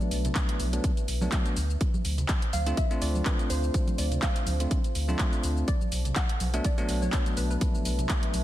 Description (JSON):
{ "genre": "deep house", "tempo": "124 BPM", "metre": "4/4", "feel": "swing 55% on 16ths", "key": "unclear", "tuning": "A4 = 436 Hz", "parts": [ { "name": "soft round pluck", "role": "melody", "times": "0.0-8.0 s", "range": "B4 to F#5", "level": "-38 LUFS", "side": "right 2 dB", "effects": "wide subtle chorus, ping-pong delay" }, { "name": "bell-like tine electric piano", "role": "stabs", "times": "0.0-8.4 s", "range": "F#3 to F4", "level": "-33 LUFS", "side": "left 1 dB", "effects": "low-pass filter, dub echo" }, { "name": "house drum kit", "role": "drums", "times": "0.0-8.4 s", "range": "handclaps, hi-hat, shaker", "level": "-34 LUFS", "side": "equal", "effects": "overdrive" }, { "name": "congas", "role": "percussion", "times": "0.0-8.4 s", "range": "none", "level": "-37 LUFS", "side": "right 2 dB", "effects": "none" }, { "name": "deep dark ambient pad", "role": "texture", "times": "0.0-8.4 s", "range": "B4 to A5", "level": "-39 LUFS", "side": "equal", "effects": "chorus, built-in reverb, sidechain pumping" }, { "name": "warm sub bass", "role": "bass", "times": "0.1-8.4 s", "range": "B1 to D2", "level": "-28 LUFS", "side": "equal", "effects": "sidechain pumping" }, { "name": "electronic kick drum", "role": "drums", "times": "0.4-8.2 s", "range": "none", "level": "-27 LUFS", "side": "equal", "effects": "overdrive" } ], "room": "digital ambience", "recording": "dense, heavily limited modern master, vinyl crackle", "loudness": "-25 LUFS", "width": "side -14 dB against mid", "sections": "0.0-8.4 A section", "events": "filter sweep on tine electric piano 0.0-8.4", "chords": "0.0 Bm7; 1.6 Dm7; 5.7 Bm7", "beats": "0.35 0.84 1.32 | 1.81 2.29 2.77 3.26 | 3.74 4.23 4.71 5.19 | 5.68 6.16 6.65 7.13 | 7.61 8.10" }